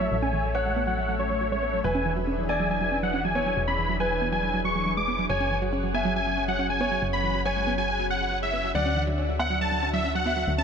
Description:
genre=trance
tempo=139 BPM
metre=4/4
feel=straight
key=F# minor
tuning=A4 = 440 Hz
part: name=dense compressed supersaw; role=melody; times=0.0-10.6 s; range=C#5 to D6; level=-27 LUFS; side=equal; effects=low-pass filter, digital delay
part: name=warm concert grand piano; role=second line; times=0.0-10.6 s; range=B4 to F#5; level=-31 LUFS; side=equal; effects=digital delay
part: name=lush unison pad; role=sustained chords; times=0.0-10.6 s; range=D3 to F#5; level=-33 LUFS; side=left 2 dB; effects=chorus
part: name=wide unison pluck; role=arpeggios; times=0.0-10.6 s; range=E3 to C#4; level=-32 LUFS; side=right 4 dB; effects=digital delay
part: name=solid FM bass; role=bass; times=0.0-10.6 s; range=E1 to D2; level=-31 LUFS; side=left 1 dB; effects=none
room=moderate huge ambient reverb, RT60 7.6 s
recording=none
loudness=-23 LUFS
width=side -6 dB against mid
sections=0.0-10.6 A section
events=filter sweep on supersaw synth 0.0-10.6; filter sweep on synth arpeggio sound 0.0-10.6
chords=0.0 A; 1.8 E7; 5.3 F#sus2; 8.7 Dadd9

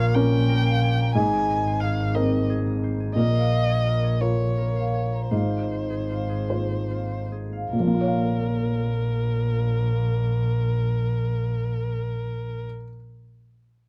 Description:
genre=neoclassical piano and strings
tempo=48-60 BPM (dotted quarters)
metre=6/8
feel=rubato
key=Bb minor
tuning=A4 = 442 Hz
part: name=warm violin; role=melody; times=0.0-12.6 s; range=Bb4 to Ab5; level=-32 LUFS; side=equal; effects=none
part: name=warm upright piano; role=accompaniment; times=0.0-13.0 s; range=Ab2 to F5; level=-29 LUFS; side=equal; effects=none
part: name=concert harp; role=arpeggios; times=0.0-11.4 s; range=F4 to Bb5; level=-36 LUFS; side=equal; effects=slapback echo
part: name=rich double bass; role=bass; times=0.0-12.6 s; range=Ab1 to Bb1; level=-27 LUFS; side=equal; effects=none
room=little or no reverb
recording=close, detailed microphones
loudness=-24 LUFS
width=mono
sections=0.0-7.7 A section; 7.7-12.6 B section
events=slowing down 2.1-7.7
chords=0.0 Bbm; 1.1 Abadd9; 3.2 Bbm; 5.3 Fm/Ab; 7.7 Bbm

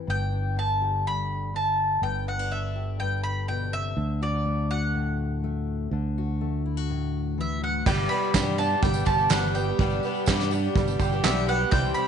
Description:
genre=indie folk with a building arrangement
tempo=123 BPM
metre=4/4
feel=straight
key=G major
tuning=A4 = 438 Hz
part: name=fingerpicked steel-string acoustic guitar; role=accompaniment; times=0.0-7.9 s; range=G2 to G4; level=-34 LUFS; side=left 9 dB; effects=none
part: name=bowl-back mandolin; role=melody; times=0.1-12.1 s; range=D5 to B5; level=-28 LUFS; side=equal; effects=none
part: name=fingered electric bass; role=bass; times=0.1-11.9 s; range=G1 to G2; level=-28 LUFS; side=equal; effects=none
part: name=picked twelve-string acoustic guitar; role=accompaniment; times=7.9-12.1 s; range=G2 to G4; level=-29 LUFS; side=left 12 dB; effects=none
part: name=warm upright piano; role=arpeggios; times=7.9-12.1 s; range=G3 to G4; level=-29 LUFS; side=right 12 dB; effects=slapback echo
part: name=soft brush drum kit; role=drums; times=7.9-12.1 s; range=crash cymbal, hi-hat, kick drum, snare drum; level=-26 LUFS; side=right 3 dB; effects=none
part: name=tambourine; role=percussion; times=8.0-12.0 s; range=none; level=-43 LUFS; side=right 16 dB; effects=none
part: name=group handclap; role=percussion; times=8.3-11.4 s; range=none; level=-34 LUFS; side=right 13 dB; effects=none
room=light reverb, small room ambience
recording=1960s-style stereo with parts hard left and right, nothing above 10.3 kHz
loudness=-23 LUFS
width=side -7 dB against mid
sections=0.0-7.9 A section; 7.9-12.1 B section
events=none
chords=0.1 G5; 4.0 D; 7.9 G

